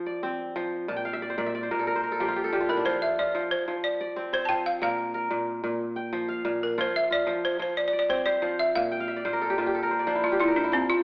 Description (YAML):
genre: west african traditional, West African string and xylophone music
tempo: 122 BPM (dotted quarters)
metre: 12/8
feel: straight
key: unclear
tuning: A4 = 439 Hz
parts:
  - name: kora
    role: arpeggios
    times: 0.0-11.0 s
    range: Bb2 to A5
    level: -27 LUFS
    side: equal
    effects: none
  - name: balafon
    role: melody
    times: 2.7-11.0 s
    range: C4 to A5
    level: -25 LUFS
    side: equal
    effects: none
room: wet large studio reverb, RT60 1.2 s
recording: band playing live in one room, AM radio sound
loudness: -24 LUFS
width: side -29 dB against mid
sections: 0.0-10.7 A section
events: kora fill 0.9-2.9, 8.9-10.7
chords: 0.0 F5; 0.9 Bb5; 2.9 F5; 4.8 Bb5; 6.8 F5; 8.8 Bb5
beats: 0.40 | 0.89 1.38 1.87 2.36 | 2.85 3.35 3.84 4.33 | 4.82 5.31 5.80 6.29 | 6.78 7.28 7.77 8.26 | 8.75 9.24 9.74 10.23 | 10.72